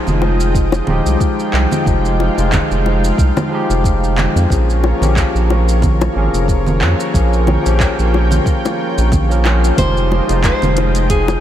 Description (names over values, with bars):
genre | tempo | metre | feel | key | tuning
sunset chillout | 91 BPM | 4/4 | swing 55% on 16ths | F minor | A4 = 440 Hz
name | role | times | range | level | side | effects
barky tine electric piano | accompaniment | 0.0-11.4 s | F3 to C5 | -19 LUFS | left 1 dB | overdrive, auto-pan, diffuse ambient delay
lush unison pad | sustained chords | 0.0-11.4 s | Ab3 to G5 | -22 LUFS | left 2 dB | chorus
round analog bass | bass | 0.1-11.4 s | Eb1 to F2 | -15 LUFS | equal | tube saturation
deep house drum kit | drums | 0.1-11.4 s | congas, handclaps, hi-hat, shaker | -22 LUFS | right 2 dB | overdrive
bongos | percussion | 0.2-11.4 s | none | -25 LUFS | left 6 dB | none
electronic kick drum | drums | 0.5-11.2 s | none | -17 LUFS | equal | none
nylon-string guitar | melody | 9.8-11.4 s | Ab4 to C5 | -19 LUFS | equal | tape echo
room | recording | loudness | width
moderate cathedral reverb, RT60 5.4 s | dreamy mix soaked in reverb | -12 LUFS | side -11 dB against mid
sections
0.0-11.4 A section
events
none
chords
0.0 Fm9; 4.5 Bbm7; 9.8 Fm9